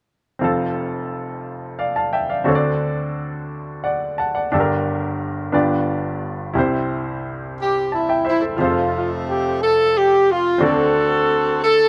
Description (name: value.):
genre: gospel.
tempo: 59 BPM (dotted quarters).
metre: 6/8.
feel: straight.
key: F major.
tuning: A4 = 441 Hz.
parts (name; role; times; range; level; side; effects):
clear baby grand piano; accompaniment; 0.4-11.9 s; F1 to A5; -23 LUFS; equal; slapback echo.
mellow horn section; melody; 7.6-11.9 s; A3 to A4; -19 LUFS; equal; slapback echo.
room: little or no reverb.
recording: recorded outdoors, with no room sound.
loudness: -20 LUFS.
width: mono.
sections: 0.4-8.6 A section; 8.6-11.9 B section.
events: none.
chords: 0.4 F; 2.5 D7; 4.5 Gm; 5.5 G7; 6.6 C; 8.6 F; 10.6 D7.